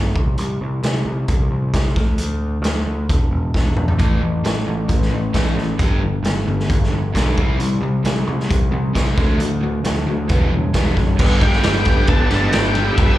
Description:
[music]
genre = classic rock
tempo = 133 BPM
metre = 4/4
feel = straight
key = unclear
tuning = A4 = 441 Hz
[part]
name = overdriven picked electric bass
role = bass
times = 0.0-13.2 s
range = E1 to D2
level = -20 LUFS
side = equal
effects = none
[part]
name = raw garage drum kit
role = drums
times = 0.2-13.1 s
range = crash cymbal, hi-hat, kick drum, ride cymbal, snare drum, toms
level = -19 LUFS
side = equal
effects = none
[part]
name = biting overdriven guitar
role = riff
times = 4.0-13.2 s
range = G2 to G4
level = -24 LUFS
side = left 7 dB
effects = none
[part]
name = raw garage guitar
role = riff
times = 4.0-13.2 s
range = G2 to D4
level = -26 LUFS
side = right 9 dB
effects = overdrive, slapback echo
[part]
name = octave-fuzz lead guitar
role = melody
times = 11.4-13.2 s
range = E5 to A5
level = -23 LUFS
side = left 2 dB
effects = wah, distortion, slapback echo, plate reverb
[part]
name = octave-fuzz lead guitar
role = second line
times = 11.4-13.2 s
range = G3 to D4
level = -27 LUFS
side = right 2 dB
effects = distortion, plate reverb, slapback echo
[sound]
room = little or no reverb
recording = live gig heard through the venue's PA, club reverb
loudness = -16 LUFS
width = side -15 dB against mid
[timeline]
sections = 0.0-11.2 A section; 11.2-13.2 B section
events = drum fill 3.5-4.0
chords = 0.0 N.C.; 4.0 A5; 5.8 G; 7.4 C5; 9.2 D; 10.3 Em; 11.2 G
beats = | 0.38 0.83 1.28 1.74 | 2.19 2.64 3.09 3.54 | 3.99 4.44 4.89 5.34 | 5.79 6.25 6.70 7.15 | 7.60 8.05 8.50 8.95 | 9.39 9.85 10.29 10.74 | 11.19 11.64 12.09 12.54 | 12.98

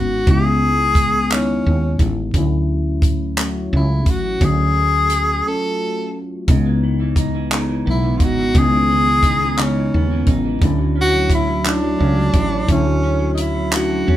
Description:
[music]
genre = slow six-eight R&B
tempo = 58 BPM (dotted quarters)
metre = 6/8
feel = straight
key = unclear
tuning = A4 = 442 Hz
[part]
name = breathy tenor saxophone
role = melody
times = 0.0-14.2 s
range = C#4 to A4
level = -19 LUFS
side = left 1 dB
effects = none
[part]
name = mellow tine electric piano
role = accompaniment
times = 0.0-14.2 s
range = C#3 to C#5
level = -22 LUFS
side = left 2 dB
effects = phaser
[part]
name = woody fretless electric bass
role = bass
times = 0.0-14.2 s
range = G#1 to E2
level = -20 LUFS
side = equal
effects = none
[part]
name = compact cocktail drum kit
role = drums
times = 0.3-13.9 s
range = handclaps, hi-hat, kick drum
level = -18 LUFS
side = equal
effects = none
[part]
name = clean electric guitar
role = second line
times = 6.5-14.2 s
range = C#3 to E4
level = -23 LUFS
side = right 2 dB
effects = phaser, tape echo
[sound]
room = moderate studio reverb, RT60 0.6 s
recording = band playing live in one room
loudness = -15 LUFS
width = side -13 dB against mid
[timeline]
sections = 0.0-14.2 A section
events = break 5.4-6.5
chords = 0.0 C#m9; 2.3 Dmaj9; 6.5 C#m9; 10.6 Dmaj9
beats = | 0.27 1.31 | 2.34 3.38 | 4.41 5.45 | 6.48 7.51 | 8.55 9.58 | 10.62 11.65 | 12.69 13.72

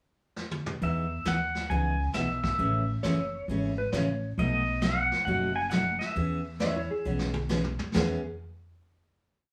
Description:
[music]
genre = country, western swing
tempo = 135 BPM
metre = 4/4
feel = swing 67% on 8ths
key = E major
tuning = A4 = 442 Hz
[part]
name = vintage brush drum kit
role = drums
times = 0.4-8.1 s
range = brushed snare drum, hi-hat, kick drum, snare drum, toms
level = -36 LUFS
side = equal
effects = none
[part]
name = pedal steel guitar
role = melody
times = 0.8-7.4 s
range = D#5 to G#5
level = -33 LUFS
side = equal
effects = none
[part]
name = picked steel-string acoustic guitar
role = accompaniment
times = 0.8-8.2 s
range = B2 to G#4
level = -33 LUFS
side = equal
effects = none
[part]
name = upright bass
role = bass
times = 0.8-8.2 s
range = F#1 to E2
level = -35 LUFS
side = equal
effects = none
[part]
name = clean lap steel guitar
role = second line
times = 3.0-8.2 s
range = E4 to E5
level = -36 LUFS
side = equal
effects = none
[sound]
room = moderate studio ambience, RT60 0.4 s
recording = band playing live in one room, small room ambience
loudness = -29 LUFS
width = mono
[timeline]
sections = 0.0-0.8 pickup bar; 0.8-7.9 A section; 7.9-9.5 final chord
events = drum fill 0.4-0.8, 7.0-7.9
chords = 0.0 N.C.; 0.8 Emaj7; 2.6 Amaj7; 4.4 B7; 6.2 E6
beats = 0.36 | 0.81 1.25 1.70 2.15 | 2.59 3.04 3.48 3.93 | 4.37 4.82 5.26 5.71 | 6.16 6.60 7.05 7.49 | 7.94

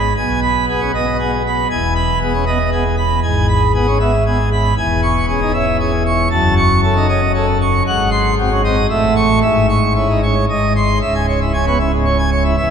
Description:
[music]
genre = classical, organ toccata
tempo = 116 BPM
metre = 3/4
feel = straight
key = C# minor from 4.8 s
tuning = A4 = 440 Hz
[part]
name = pipe organ, plenum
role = solo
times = 0.0-12.7 s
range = C#1 to C#6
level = -13 LUFS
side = equal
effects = none
[sound]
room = wet cathedral reverb, RT60 5.1 s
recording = minimal, uncompressed stereo recording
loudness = -13 LUFS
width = side -7 dB against mid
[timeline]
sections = 0.0-11.0 A section; 11.0-12.7 B section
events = none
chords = 0.2 G#m/B; 1.7 Emaj7; 3.2 E/G#; 4.8 C#m/E; 6.3 D#m7b5/F#; 7.9 G#7; 8.9 A; 9.4 C#m/G#; 10.5 G#; 11.0 C#m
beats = | 0.17 0.68 1.19 | 1.71 2.21 2.73 | 3.24 3.75 4.26 | 4.78 5.29 5.80 | 6.32 6.84 7.35 | 7.86 8.38 8.90 | 9.43 9.96 10.49 | 11.02 11.54 12.06 | 12.58

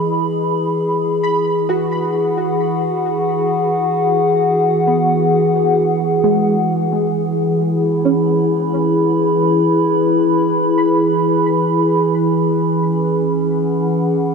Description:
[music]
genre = ambient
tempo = 66 BPM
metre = 3/4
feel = straight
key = E major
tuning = A4 = 440 Hz
[part]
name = warbly tape-like pad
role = sustained chords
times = 0.0-14.3 s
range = E3 to B5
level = -14 LUFS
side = equal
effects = chorus, built-in reverb
[part]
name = soft round pluck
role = arpeggios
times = 0.0-14.0 s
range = G#3 to B5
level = -24 LUFS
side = right 1 dB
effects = ensemble chorus, tape echo
[sound]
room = wet huge ambient reverb, RT60 7.7 s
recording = none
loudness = -14 LUFS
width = side -5 dB against mid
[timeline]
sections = 0.0-7.1 A section; 7.1-14.3 B section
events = none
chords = 0.0 Bsus4/E; 1.7 F#sus2/E; 7.1 E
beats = 0.77 | 1.68 2.59 3.50 | 4.41 5.32 6.23 | 7.14 8.05 8.96 | 9.87 10.77 11.68 | 12.59 13.50

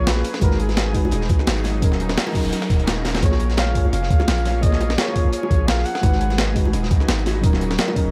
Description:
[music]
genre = liquid drum and bass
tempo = 171 BPM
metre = 4/4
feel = swing 54% on 16ths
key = unclear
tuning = A4 = 442 Hz
[part]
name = warm flugelhorn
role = melody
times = 0.0-6.4 s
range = Ab4 to Gb5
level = -31 LUFS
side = equal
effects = tape echo
[part]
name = mellow FM electric piano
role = accompaniment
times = 0.0-8.1 s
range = Gb3 to Db5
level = -28 LUFS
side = equal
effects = chorus, tape echo
[part]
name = shimmering ambient pad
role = sustained chords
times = 0.0-8.1 s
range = F3 to Bb4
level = -34 LUFS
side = equal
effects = chorus, built-in reverb, sidechain pumping
[part]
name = long sustained 808-style bass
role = bass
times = 0.0-8.1 s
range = Eb1 to Db2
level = -24 LUFS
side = equal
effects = tube saturation
[part]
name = breakbeat sampler-style drum kit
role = drums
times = 0.1-8.0 s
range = hi-hat, snare drum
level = -27 LUFS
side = equal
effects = none
[part]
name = crunchy breakbeat drum kit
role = drums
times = 0.1-8.1 s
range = hi-hat, snare drum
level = -34 LUFS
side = equal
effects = high-pass filter on hats, high-pass filter on snare, high-pass filter on room, analog delay
[part]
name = bongos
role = percussion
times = 0.1-7.9 s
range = none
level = -34 LUFS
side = equal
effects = none
[part]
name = electronic kick drum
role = drums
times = 0.4-8.0 s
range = none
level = -21 LUFS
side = equal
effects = none
[part]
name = noise sweep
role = sound effects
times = 2.1-3.2 s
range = none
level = -38 LUFS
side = equal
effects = none
[sound]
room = light reverb, small room ambience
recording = echo-heavy mix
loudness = -19 LUFS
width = mono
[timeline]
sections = 0.0-8.1 A section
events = noise sweep 2.1-3.2; drum fill 3.1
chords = 0.2 Abm7; 1.8 Ebm7; 3.2 Bbm7; 5.9 Abm7; 7.4 Ebm7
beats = 0.07 | 0.42 0.77 1.12 1.47 | 1.82 2.17 2.52 2.88 | 3.23 3.58 3.93 4.28 | 4.63 4.98 5.33 5.68 | 6.03 6.38 6.74 7.09 | 7.44 7.79

